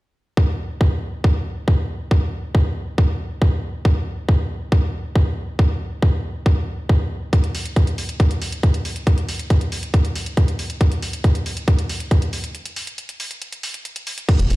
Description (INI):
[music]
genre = psychedelic trance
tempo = 138 BPM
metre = 4/4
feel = straight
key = unclear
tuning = A4 = 439 Hz
[part]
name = electronic kick drum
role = drums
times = 0.4-14.4 s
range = none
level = -15 LUFS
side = equal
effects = none
[part]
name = garage drum kit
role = drums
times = 7.3-14.6 s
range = crash cymbal, hi-hat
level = -29 LUFS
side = equal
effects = none
[part]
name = tight sequencer bass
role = bass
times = 14.4-14.6 s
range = F1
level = -16 LUFS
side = equal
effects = none
[sound]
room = little or no reverb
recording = played on a big sound system in a bare room, stone room reverb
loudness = -18 LUFS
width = side -20 dB against mid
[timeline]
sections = 0.4-14.3 A section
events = break 12.5-14.3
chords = none